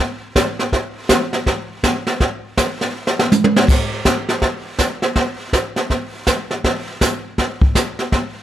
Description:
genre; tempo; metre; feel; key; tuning
country; 162 BPM; 4/4; swing 63% on 8ths; none; none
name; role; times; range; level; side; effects
jazz brush drum kit; drums; 0.4-8.4 s; brushed snare drum, crash cymbal, hi-hat, kick drum, snare drum, toms; -16 LUFS; equal; none
room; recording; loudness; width
light reverb; none; -16 LUFS; side -12 dB against mid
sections
0.0-3.7 A section; 3.7-8.4 B section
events
drum fill 2.9-3.7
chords
none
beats
0.35 | 0.72 1.09 1.46 1.83 | 2.20 2.57 2.94 3.31 | 3.68 4.05 4.42 4.79 | 5.16 5.53 5.90 6.27 | 6.64 7.01 7.38 7.75 | 8.12

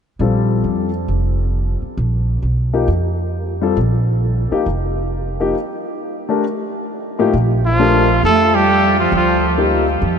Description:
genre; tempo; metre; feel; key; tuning
modal jazz; 134 BPM; 4/4; swing 65% on 8ths; Bb major; A4 = 440 Hz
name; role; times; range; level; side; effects
warm concert grand piano; accompaniment; 0.2-9.8 s; A2 to Bb4; -20 LUFS; left 4 dB; wide subtle chorus
upright bass; bass; 0.2-10.2 s; F1 to F2; -18 LUFS; right 1 dB; none
mellow bass clarinet; second line; 7.6-9.5 s; F3 to A3; -19 LUFS; right 4 dB; ping-pong delay
clear trumpet; melody; 7.7-9.6 s; F4 to A4; -14 LUFS; equal; ping-pong delay
room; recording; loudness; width
wet huge ambient reverb, RT60 6.9 s; dreamy mix soaked in reverb, nothing above 10.9 kHz; -14 LUFS; side -7 dB against mid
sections
0.2-7.3 A section; 7.3-10.2 B section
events
break 5.6-7.3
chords
0.2 Bbmaj7(no3); 7.3 Bbmaj7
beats
| 0.20 0.65 1.09 1.54 | 1.99 2.43 2.88 3.33 | 3.77 4.22 4.66 5.11 | 5.56 6.00 6.45 6.89 | 7.34 7.79 8.23 8.68 | 9.12 9.57 10.01

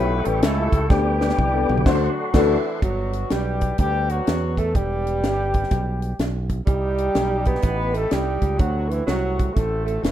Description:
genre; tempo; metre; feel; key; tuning
uptempo gospel; 125 BPM; 4/4; swing 65% on 8ths; G major; A4 = 440 Hz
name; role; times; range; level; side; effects
mellow horn section; melody; 0.0-10.1 s; E3 to B4; -26 LUFS; left 3 dB; none
warm upright piano; accompaniment; 0.0-2.6 s; D3 to E5; -23 LUFS; left 4 dB; none
tonewheel organ; sustained chords; 0.0-2.8 s; A4 to D6; -30 LUFS; right 2 dB; slow rotary speaker, chorus vibrato
modern bright fingered electric bass; bass; 0.0-10.1 s; E1 to E2; -24 LUFS; right 1 dB; none
tight funk drum kit; drums; 0.3-10.1 s; crash cymbal, hi-hat, kick drum, snare drum, toms; -22 LUFS; equal; none
breathy tenor saxophone; melody; 2.4-10.1 s; E3 to B3; -27 LUFS; right 5 dB; none
room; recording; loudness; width
light reverb, small room ambience; rough home demo mix; -19 LUFS; side -11 dB against mid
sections
0.0-2.8 A section; 2.8-10.1 B section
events
drum fill 0.9-2.8; band accent 1.9-2.8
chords
0.0 A7; 0.9 G/D; 1.9 D7; 2.8 Gmaj7; 4.7 Em7; 6.7 Cm6; 8.6 D7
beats
0.42 | 0.90 1.38 1.86 2.34 | 2.82 3.30 3.79 4.27 | 4.75 5.23 5.71 6.19 | 6.67 7.15 7.63 8.12 | 8.60 9.08 9.56 10.04

